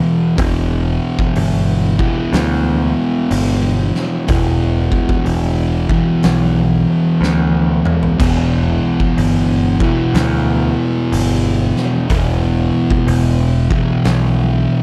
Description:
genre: stoner and doom metal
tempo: 61 BPM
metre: 4/4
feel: swing 65% on 8ths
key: E minor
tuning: A4 = 442 Hz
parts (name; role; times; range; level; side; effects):
- fuzz guitar; riff; 0.0-14.8 s; E2 to E3; -18 LUFS; equal; distortion
- growling picked electric bass; bass; 0.4-14.7 s; E1 to D2; -20 LUFS; equal; overdrive
- oversized low-tuned drum kit; drums; 0.4-14.3 s; crash cymbal, hi-hat, kick drum, snare drum, toms; -23 LUFS; equal; none
room: little or no reverb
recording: none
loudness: -15 LUFS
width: mono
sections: 0.0-14.8 A section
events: drum fill 7.2-8.2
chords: 0.0 Em

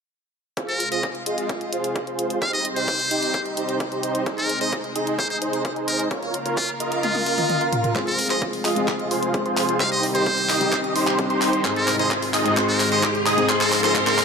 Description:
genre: EDM, festival progressive house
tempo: 130 BPM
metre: 4/4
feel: straight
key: F minor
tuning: A4 = 440 Hz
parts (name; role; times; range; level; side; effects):
- lush unison pad; sustained chords; 0.6-14.2 s; C3 to C5; -30 LUFS; equal; chorus, sidechain pumping
- supersaw chords; riff; 0.6-14.2 s; Eb4 to F5; -26 LUFS; right 1 dB; sidechain pumping, low-pass filter, digital delay
- electronic kick drum; drums; 0.6-14.0 s; none; -31 LUFS; equal; overdrive, high-pass filter on kick, high-pass filter on room
- pop drum kit; drums; 0.6-14.2 s; handclaps, hi-hat, toms; -27 LUFS; equal; none
- trumpet with metal mute; melody; 0.7-14.2 s; F4 to F5; -25 LUFS; equal; digital delay
- swell and riser; sound effects; 7.2-14.2 s; none; -29 LUFS; equal; none
- dark concert grand piano; accompaniment; 7.9-14.2 s; Ab2 to Ab4; -26 LUFS; left 3 dB; sidechain pumping, digital delay
- wide unison lead; arpeggios; 8.0-14.2 s; C6 to Eb6; -27 LUFS; right 1 dB; sidechain pumping, digital delay
- detuned saw bass; bass; 8.0-14.2 s; F1 to Ab2; -37 LUFS; right 1 dB; none
room: moderate lush hall reverb, RT60 1.6 s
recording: none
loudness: -20 LUFS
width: side -5 dB against mid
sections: 0.6-8.0 A section; 8.0-14.2 B section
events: kick drops out 7.0-8.0; drum fill 7.0-8.0, 8.0-14.2; swell 7.2-8.0; build-up 8.0-14.2; filter sweep on supersaw synth 8.0-14.2; filter sweep on analog synth lead 8.0-14.2; riser 10.4-14.2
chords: 0.6 Fm; 2.4 Cm; 4.3 Ab; 6.1 Bbm; 8.0 Fm; 9.8 Cm; 11.6 Ab; 13.5 Bbm

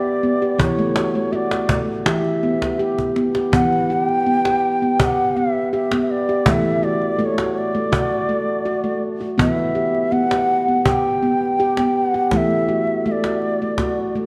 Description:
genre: world meditative, meditative tuned percussion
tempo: 82 BPM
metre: 4/4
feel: straight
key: E dorian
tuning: A4 = 440 Hz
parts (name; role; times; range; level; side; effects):
- mellow bansuri; melody; 0.0-14.2 s; C#5 to G5; -24 LUFS; equal; tape echo
- handpan; arpeggios; 0.0-14.3 s; E3 to G4; -22 LUFS; equal; none
- cajon; percussion; 0.6-14.2 s; none; -25 LUFS; equal; none
room: wet concert hall reverb, RT60 2.0 s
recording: none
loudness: -19 LUFS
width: mono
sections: 0.0-3.5 A section; 3.5-14.3 B section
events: drum fill 3.0-3.5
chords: 0.0 Em; 0.6 E13sus4; 2.1 Em; 6.5 D/E; 9.4 Em; 12.3 D/E

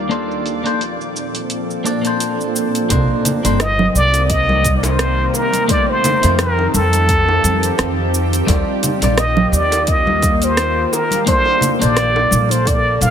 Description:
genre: sunset chillout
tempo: 86 BPM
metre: 4/4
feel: swing 56% on 16ths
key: Bb major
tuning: A4 = 440 Hz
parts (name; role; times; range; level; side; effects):
- shimmering ambient pad; sustained chords; 0.0-13.1 s; Bb2 to A5; -22 LUFS; left 1 dB; chorus, built-in reverb
- clean electric guitar; accompaniment; 0.1-12.0 s; G3 to D5; -21 LUFS; left 1 dB; auto-pan, ping-pong delay
- smooth R&B drum kit; drums; 0.1-13.1 s; congas, hi-hat, rim click, shaker; -20 LUFS; right 2 dB; overdrive
- upright bass; bass; 2.9-13.1 s; G1 to F2; -18 LUFS; equal; tube saturation
- electronic kick drum; drums; 2.9-12.8 s; none; -19 LUFS; equal; none
- bongos and congas; percussion; 2.9-13.1 s; none; -24 LUFS; left 2 dB; none
- trumpet with plunger mute; melody; 3.6-13.1 s; A4 to F5; -17 LUFS; equal; ping-pong delay
room: light reverb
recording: low-pass filter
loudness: -13 LUFS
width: side -8 dB against mid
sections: 0.0-2.9 A section; 2.9-13.1 B section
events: none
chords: 0.1 Bbmaj9; 2.9 Cm9; 5.7 F7; 8.5 Ebmaj9; 11.3 Bbmaj9

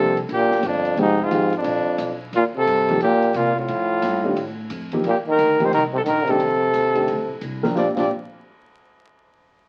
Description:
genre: jazz, small-group swing and bop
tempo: 177 BPM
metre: 4/4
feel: swing 64% on 8ths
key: Bb major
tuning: A4 = 438 Hz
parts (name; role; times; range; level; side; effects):
- warm trumpet; melody; 0.0-8.1 s; D4 to D5; -24 LUFS; equal; none
- breathy trombone; second line; 0.0-8.1 s; F2 to F3; -24 LUFS; equal; none
- dark upright piano; accompaniment; 0.0-8.1 s; Eb3 to Bb4; -26 LUFS; equal; none
- upright bass; bass; 0.0-8.1 s; F1 to C3; -35 LUFS; equal; none
- open jazz drum kit; drums; 0.2-8.0 s; crash cymbal, hi-hat, kick drum, ride cymbal, snare drum; -38 LUFS; equal; none
room: moderate club reverb, RT60 0.8 s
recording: very old 78 rpm record, vinyl crackle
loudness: -20 LUFS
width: mono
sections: 0.0-2.3 A section; 2.3-7.8 B section; 7.8-9.1 C section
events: none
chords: 0.0 Bb69; 1.0 Fm7; 1.6 Bb; 2.3 Eb6; 3.7 F9; 5.0 Eb6; 6.4 F13; 7.8 Bb69

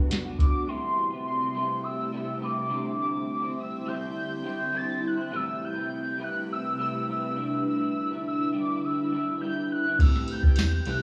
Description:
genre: indie pop, bedroom pop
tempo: 103 BPM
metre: 4/4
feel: straight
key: A dorian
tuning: A4 = 438 Hz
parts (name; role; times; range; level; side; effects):
- warm velvety synth lead; melody; 0.0-11.0 s; B4 to A6; -33 LUFS; equal; subtle chorus, tape echo
- electric guitar through a small old amp; accompaniment; 0.0-11.0 s; A2 to C5; -34 LUFS; equal; ensemble chorus, warbly pitch drift
- mellow tine electric piano; accompaniment; 0.0-0.7, 10.0-11.0 s; C4 to B4; -43 LUFS; equal; none
- ethereal airy pad; sustained chords; 0.2-11.0 s; C3 to B4; -39 LUFS; equal; ensemble chorus, built-in reverb, phaser
- plucky analog bass; bass; 0.0-0.5, 10.0-11.0 s; F#1 to E2; -32 LUFS; equal; transformer saturation
- soft vintage rhythm box; drums; 0.1-0.5, 10.0-11.0 s; hi-hat, kick drum, ride cymbal, snare drum; -24 LUFS; equal; vintage 12-bit sampler grit
- tambourine; percussion; 10.6-10.7 s; none; -43 LUFS; equal; none
room: little or no reverb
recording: dry, gritty hardware recording, transformer saturation, small room reverb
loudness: -28 LUFS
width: mono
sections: 0.7-11.0 A section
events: none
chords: 0.0 Gmaj7; 0.7 Am9; 2.7 D9sus4; 5.3 Am9; 7.4 G6; 10.0 Am9

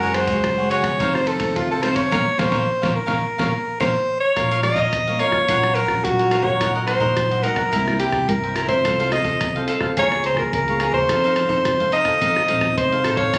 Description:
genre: samba and choro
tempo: 107 BPM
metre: 4/4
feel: straight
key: Bb minor, Bb harmonic minor from 4.4 s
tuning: A4 = 440 Hz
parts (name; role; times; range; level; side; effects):
- warm soprano saxophone; melody; 0.0-13.4 s; F4 to Eb5; -22 LUFS; equal; none
- cavaquinho; accompaniment; 0.0-13.4 s; Eb4 to Bb5; -28 LUFS; equal; none
- nylon-string guitar; accompaniment; 0.0-13.4 s; F2 to A4; -29 LUFS; equal; none
- upright bass; bass; 0.0-13.4 s; Eb1 to C3; -31 LUFS; equal; none
- lo-fi sampler-style drum kit; drums; 0.1-13.4 s; hi-hat, kick drum, ride cymbal, rim click, snare drum; -30 LUFS; equal; none
room: moderate large studio reverb, RT60 1.2 s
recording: recorded on a phone in the room, club reverb, compression, nothing above 10.7 kHz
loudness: -20 LUFS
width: mono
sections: 0.0-4.4 A section; 4.4-13.4 B section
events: band accent 2.1-4.4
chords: 0.0 Gbsus2; 1.0 F7; 2.1 Bbm; 5.5 Gbmaj7/Bb; 6.6 Ebm/Bb; 7.7 C7; 8.9 F/C; 10.0 Bbm7/Db; 11.1 F7

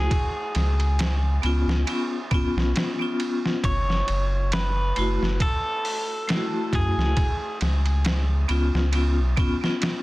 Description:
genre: trip hop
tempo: 68 BPM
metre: 4/4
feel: swing 56% on 16ths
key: unclear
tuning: A4 = 440 Hz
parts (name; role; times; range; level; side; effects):
- clean electric guitar; melody; 0.0-7.6 s; G#4 to C#5; -30 LUFS; equal; tape echo
- vibraphone with hard mallets; accompaniment; 0.0-10.0 s; A3 to F#4; -28 LUFS; left 1 dB; tremolo, tape echo
- warm sub bass; bass; 0.0-9.4 s; F#1 to F#2; -22 LUFS; equal; none
- trip hop sampler-style drum kit; drums; 0.1-10.0 s; hi-hat, kick drum, ride cymbal, snare drum; -27 LUFS; equal; overdrive, vintage 12-bit sampler grit, small room ambience
room: digital ambience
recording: dense, heavily limited modern master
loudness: -21 LUFS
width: side -18 dB against mid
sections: 0.0-10.0 A section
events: none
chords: 0.1 C#7; 3.6 F#m7; 7.2 C#7

